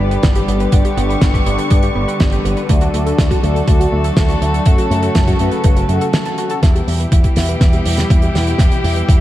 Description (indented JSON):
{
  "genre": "italo disco",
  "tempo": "122 BPM",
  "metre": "4/4",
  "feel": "straight",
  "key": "unclear",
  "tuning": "A4 = 442 Hz",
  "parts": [
    { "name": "warm chamber string section", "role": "sustained chords", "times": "0.0-9.2 s", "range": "B2 to C#6", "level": "-20 LUFS", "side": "equal", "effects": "none" },
    { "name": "analog pluck", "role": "arpeggios", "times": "0.0-9.2 s", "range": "A3 to A5", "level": "-25 LUFS", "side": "right 2 dB", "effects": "chorus, ping-pong delay" },
    { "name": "mellow synth brass", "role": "stabs", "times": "0.0-9.2 s", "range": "B3 to F#5", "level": "-24 LUFS", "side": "left 3 dB", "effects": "chorus, ping-pong delay" },
    { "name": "picked electric bass with an envelope filter", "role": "bass", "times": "0.0-9.2 s", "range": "F#1 to G2", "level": "-18 LUFS", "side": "equal", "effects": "none" },
    { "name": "damped 70s drum kit", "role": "drums", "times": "0.1-9.2 s", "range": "hi-hat, snare drum", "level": "-21 LUFS", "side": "right 1 dB", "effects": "none" },
    { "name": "electronic kick drum", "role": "drums", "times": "0.2-9.2 s", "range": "none", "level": "-13 LUFS", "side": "equal", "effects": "overdrive" }
  ],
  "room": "light reverb, studio reverb",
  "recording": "dark, warm production, vinyl crackle",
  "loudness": "-12 LUFS",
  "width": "side -14 dB against mid",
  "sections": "0.0-6.6 A section; 6.6-9.2 B section",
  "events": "break 6.1-6.6; drum fill 6.6-9.2",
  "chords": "0.0 G; 2.7 D; 4.7 F#m; 6.6 Em"
}